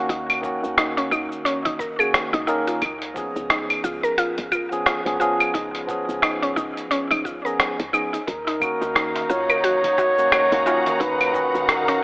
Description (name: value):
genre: organic downtempo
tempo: 88 BPM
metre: 4/4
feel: swing 58% on 16ths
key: Eb minor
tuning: A4 = 440 Hz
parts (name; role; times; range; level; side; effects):
- tine electric piano; accompaniment; 0.0-12.0 s; Bb2 to Bb4; -26 LUFS; equal; fast stereo tremolo, sidechain pumping, tape echo, shimmer reverb
- mallet-like synth pluck; arpeggios; 0.1-12.0 s; Db4 to Bb4; -26 LUFS; equal; chorus, tape echo, shimmer reverb
- woody FM bass; bass; 0.1-12.0 s; Eb1 to Eb2; -30 LUFS; equal; tube saturation
- dusty soul sampler-style drum kit; drums; 0.1-12.0 s; cabasa, claves, hi-hat, rim click; -22 LUFS; equal; none
- electronic kick drum; drums; 0.1-11.5 s; none; -39 LUFS; equal; none
- trumpet with bucket mute; melody; 8.3-12.0 s; Bb4 to Db5; -20 LUFS; equal; vintage 12-bit sampler grit, shimmer reverb
- rich studio string section; sustained chords; 8.3-12.0 s; Eb4 to Bb5; -28 LUFS; left 1 dB; sidechain pumping, shimmer reverb
- darbuka; percussion; 8.5-12.0 s; none; -32 LUFS; equal; none
room: wet lush hall reverb, RT60 2.0 s, digital ambience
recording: telephone sound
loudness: -19 LUFS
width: side -26 dB against mid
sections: 0.0-12.0 A section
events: none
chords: 0.0 Ebm7; 2.8 Db7; 8.3 Ebm7